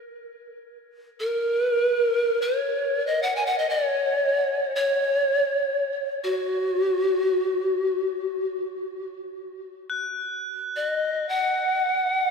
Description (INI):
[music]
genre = world meditative, free-time meditation music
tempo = free time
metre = none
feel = none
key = F# major pentatonic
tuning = A4 = 442 Hz
[part]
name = crotales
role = texture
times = 0.0-12.3 s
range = F#6 to A#6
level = -30 LUFS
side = left 2 dB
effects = none
[part]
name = breathy polished pan flute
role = melody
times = 1.2-12.3 s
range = F#4 to G#5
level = -22 LUFS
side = equal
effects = ping-pong delay
[sound]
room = wet cathedral reverb, RT60 5.3 s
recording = dreamy mix soaked in reverb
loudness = -22 LUFS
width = side -5 dB against mid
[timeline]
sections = 0.0-9.3 A section; 9.3-12.3 A section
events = none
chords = none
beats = free time